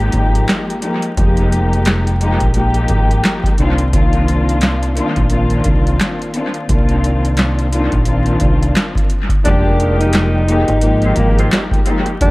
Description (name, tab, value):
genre	hip hop, boom-bap hip-hop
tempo	87 BPM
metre	4/4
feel	swing 58% on 16ths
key	F dorian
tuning	A4 = 440 Hz
part	dark studio string section	accompaniment	0.0-12.3 s	Eb3 to G4	-18 LUFS	left 1 dB	cassette tape, high-pass filter, low-pass filter
part	deep dub fingered electric bass	bass	0.0-12.3 s	F1 to C2	-16 LUFS	equal	none
part	booming analog drum machine	drums	0.1-12.3 s	handclaps, hi-hat, kick drum, snare drum	-17 LUFS	equal	overdrive, dub echo
part	breathy tenor saxophone	melody	9.4-12.3 s	Bb3 to Eb4	-18 LUFS	equal	high-pass filter, low-pass filter, dub echo
part	mellow saxophone section	stabs	9.8-11.7 s	Bb3 to Bb4	-26 LUFS	right 2 dB	high-pass filter, low-pass filter, dub echo
room	little or no reverb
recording	echo-heavy mix, vinyl crackle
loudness	-12 LUFS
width	side -21 dB against mid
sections	0.0-9.5 A section; 9.5-12.3 B section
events	none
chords	0.0 Fm11; 3.6 Cm11; 9.5 Fm11